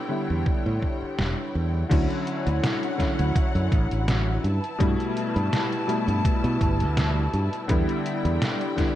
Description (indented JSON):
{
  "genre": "vaporwave",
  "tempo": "83 BPM",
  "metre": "4/4",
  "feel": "swing 54% on 16ths",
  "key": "unclear",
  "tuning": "A4 = 438 Hz",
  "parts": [
    { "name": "warm electric grand piano", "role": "accompaniment", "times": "0.0-9.0 s", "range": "B2 to E4", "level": "-27 LUFS", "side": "left 2 dB", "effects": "analog chorus, analog delay" },
    { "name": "warm studio string section", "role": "sustained chords", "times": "0.0-9.0 s", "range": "E4 to A5", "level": "-32 LUFS", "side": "equal", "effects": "vintage 12-bit sampler grit" },
    { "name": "modern bright fingered electric bass", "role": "bass", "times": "0.3-8.4 s", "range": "E1 to B2", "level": "-24 LUFS", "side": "equal", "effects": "none" },
    { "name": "electronic kick drum", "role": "drums", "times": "0.5-8.9 s", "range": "none", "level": "-24 LUFS", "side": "equal", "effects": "none" },
    { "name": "detuned 8-bit digital drum machine", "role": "drums", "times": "1.2-8.9 s", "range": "crash cymbal, hi-hat, snare drum", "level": "-29 LUFS", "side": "equal", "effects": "gated reverb" }
  ],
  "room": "light reverb",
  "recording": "cassette tape",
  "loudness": "-22 LUFS",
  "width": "side -13 dB against mid",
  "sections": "0.0-1.9 A section; 1.9-9.0 B section",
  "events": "none",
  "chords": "0.0 Em7; 1.9 Dmaj9; 4.4 G69; 7.7 Em7"
}